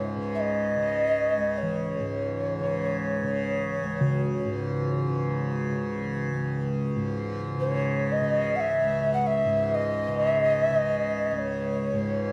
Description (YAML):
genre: world meditative, free-time meditation music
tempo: free time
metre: none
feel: none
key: C# minor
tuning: A4 = 440 Hz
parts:
  - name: breathy mellow Native American-style cedar flute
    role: melody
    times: 0.0-12.3 s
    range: C#5 to F#5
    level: -28 LUFS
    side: equal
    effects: delay
  - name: tanpura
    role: drone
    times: 0.0-12.3 s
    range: C#2 to C#3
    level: -32 LUFS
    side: equal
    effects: none
  - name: bronze singing bowl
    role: texture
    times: 1.6-12.0 s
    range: C#3 to E3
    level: -34 LUFS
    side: equal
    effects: none
room: wet studio ambience, RT60 0.5 s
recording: dark, warm production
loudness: -27 LUFS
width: mono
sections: 0.0-12.3 A section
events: none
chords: none